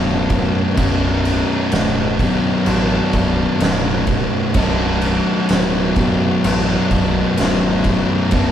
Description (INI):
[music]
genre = stoner and doom metal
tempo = 64 BPM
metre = 4/4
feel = straight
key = B minor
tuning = A4 = 440 Hz
[part]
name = tonewheel organ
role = sustained chords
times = 0.0-8.5 s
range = B3 to C#5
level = -30 LUFS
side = right 1 dB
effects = none
[part]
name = biting overdriven guitar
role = riff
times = 0.0-8.5 s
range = B1 to D4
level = -24 LUFS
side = equal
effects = none
[part]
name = thick fuzz guitar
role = riff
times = 0.0-8.5 s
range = B1 to B2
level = -19 LUFS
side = left 3 dB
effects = distortion
[part]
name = thick fuzz guitar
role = riff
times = 0.0-8.5 s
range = B1 to B2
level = -22 LUFS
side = right 3 dB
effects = distortion
[part]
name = growling picked electric bass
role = bass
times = 0.0-8.5 s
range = B0 to A1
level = -24 LUFS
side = equal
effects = overdrive
[part]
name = oversized low-tuned drum kit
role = drums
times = 0.3-8.5 s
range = crash cymbal, kick drum, snare drum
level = -20 LUFS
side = equal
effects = none
[sound]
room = moderate stone room reverb, RT60 1.0 s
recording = band playing live in one room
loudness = -14 LUFS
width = side -10 dB against mid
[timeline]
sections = 0.0-8.5 A section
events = none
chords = 0.0 Bm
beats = | 0.78 1.72 2.67 3.61 | 4.56 5.50 6.45 7.39 | 8.34